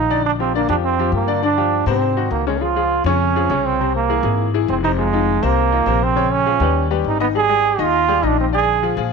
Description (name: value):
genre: latin, salsa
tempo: 203 BPM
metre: 4/4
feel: straight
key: unclear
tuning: A4 = 440 Hz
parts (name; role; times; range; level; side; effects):
- bright trombone; melody; 0.0-9.0 s; Ab3 to Ab4; -18 LUFS; right 10 dB; none
- clear grand piano; accompaniment; 0.0-9.1 s; C3 to Eb5; -21 LUFS; left 14 dB; none
- upright bass; bass; 0.0-9.1 s; F1 to Bb2; -22 LUFS; left 2 dB; none
room: light reverb, small room ambience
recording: 1960s-style stereo with parts hard left and right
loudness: -15 LUFS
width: side -5 dB against mid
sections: 0.0-2.6 A section; 2.6-9.1 B section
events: none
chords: 0.2 Bb69; 1.4 G5; 2.0 Ab7; 2.6 Dbmaj7; 3.8 Caug7; 5.0 Fm7; 6.2 Bbm7; 6.8 Ebaug; 7.3 Ab5; 8.5 Bb7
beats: | 0.24 0.54 0.83 1.13 | 1.43 1.72 2.02 2.32 | 2.61 2.91 3.21 3.50 | 3.80 4.09 4.39 4.69 | 4.98 5.28 5.57 5.87 | 6.17 6.46 6.76 7.05 | 7.35 7.64 7.94 8.24 | 8.53 8.83 9.12